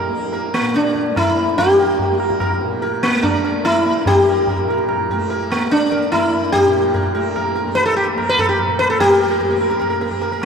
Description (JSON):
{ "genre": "indian classical, Hindustani", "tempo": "146 BPM", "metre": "3/4", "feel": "straight", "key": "Bb raga marwa", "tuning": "A4 = 441 Hz", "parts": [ { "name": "sitar", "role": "melody", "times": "0.0-10.4 s", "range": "Bb3 to Cb5", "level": "-16 LUFS", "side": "equal", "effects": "none" }, { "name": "tanpura", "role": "drone", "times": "0.0-10.4 s", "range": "Bb2 to Bb3", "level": "-27 LUFS", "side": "equal", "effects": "none" }, { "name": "tabla", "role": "percussion", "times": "0.1-10.4 s", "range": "none", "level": "-22 LUFS", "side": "right 2 dB", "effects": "none" } ], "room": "wet cathedral reverb, RT60 6.5 s", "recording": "in a vast, echoing space", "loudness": "-14 LUFS", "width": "side -6 dB against mid", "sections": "0.0-9.0 A section; 9.0-10.4 B section", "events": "speeding up 0.0-10.4", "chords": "none", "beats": "| 0.32 0.74 1.16 | 1.57 1.99 2.40 | 2.82 3.23 3.65 | 4.06 4.48 4.89 | 5.30 5.71 6.12 | 6.53 6.95 7.35 | 7.76 8.17 8.58 | 8.99 9.40 9.80 | 10.21" }